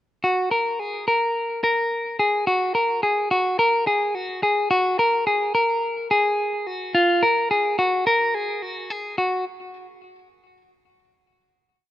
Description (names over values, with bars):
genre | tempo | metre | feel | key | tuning
indie pop | 107 BPM | 4/4 | straight | F# major | A4 = 438 Hz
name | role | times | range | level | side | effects
clean electric guitar | solo | 0.2-9.4 s | F4 to A#4 | -19 LUFS | left 1 dB | none
room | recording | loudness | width
light reverb | rough home demo mix | -19 LUFS | side -14 dB against mid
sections
0.2-9.2 verse; 9.2-11.4 final note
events
none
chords
none